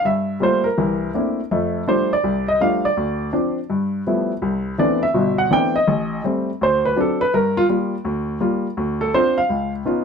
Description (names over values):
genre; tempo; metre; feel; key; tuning
solo jazz; 165 BPM; 4/4; swing 65% on 8ths; unclear; A4 = 442 Hz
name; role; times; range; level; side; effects
warm baby grand piano; solo; 0.0-10.0 s; G1 to G5; -17 LUFS; equal; none
room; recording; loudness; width
moderate studio reverb, RT60 0.6 s; dark, warm production; -17 LUFS; side -6 dB against mid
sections
0.0-10.0 A section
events
grand piano solo 0.0-10.0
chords
0.0 Gm9; 0.8 C13; 1.5 F69; 3.0 Dm7; 3.7 G13; 4.4 Cmaj13; 5.9 Am7b5; 6.6 D7; 7.3 Gm7; 8.8 Dm7; 9.5 Db9